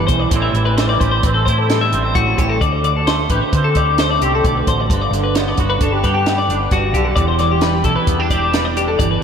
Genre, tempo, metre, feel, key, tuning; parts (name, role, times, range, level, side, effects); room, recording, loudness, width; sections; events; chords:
math rock and midwest emo; 132 BPM; 5/4; straight; G major; A4 = 440 Hz
twangy electric guitar; accompaniment; 0.0-9.2 s; D2 to G4; -21 LUFS; right 5 dB; ensemble chorus
twelve-string electric guitar; arpeggios; 0.0-9.2 s; F#4 to E5; -18 LUFS; left 4 dB; wide subtle chorus, analog delay
hollow-body short-scale fingered electric bass; bass; 0.0-9.2 s; E1 to D3; -20 LUFS; equal
compact cocktail drum kit; drums; 0.1-9.1 s; hi-hat, kick drum, snare drum; -20 LUFS; right 1 dB
wet church reverb, RT60 3.2 s; dreamy mix soaked in reverb; -14 LUFS; side -7 dB against mid
0.0-9.2 A section
0.3 Am7; 2.6 D5; 4.9 Gmaj7; 7.2 Em7